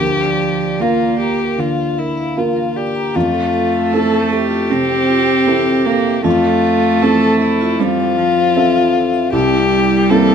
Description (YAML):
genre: neoclassical piano and strings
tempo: 77 BPM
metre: 4/4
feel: rubato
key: F major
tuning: A4 = 440 Hz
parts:
  - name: dark violin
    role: melody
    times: 0.0-10.3 s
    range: E4 to A4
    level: -16 LUFS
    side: left 6 dB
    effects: none
  - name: warm cello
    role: second line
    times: 0.0-10.3 s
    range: F3 to C4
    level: -17 LUFS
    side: right 5 dB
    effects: none
  - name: felt-muted upright piano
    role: accompaniment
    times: 0.0-10.3 s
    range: C2 to E5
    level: -18 LUFS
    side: right 1 dB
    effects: none
  - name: vibraphone with medium mallets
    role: arpeggios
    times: 0.0-10.3 s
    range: C4 to Bb5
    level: -25 LUFS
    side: right 2 dB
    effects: none
room: little or no reverb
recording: minimal, uncompressed stereo recording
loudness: -13 LUFS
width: side -7 dB against mid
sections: 0.0-10.3 A section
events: none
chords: 0.0 Bb/D; 3.1 Fmaj7; 9.3 C7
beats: | 0.01 0.81 1.59 2.37 | 3.15 3.93 4.70 5.47 | 6.25 7.02 7.80 8.56 | 9.33 10.10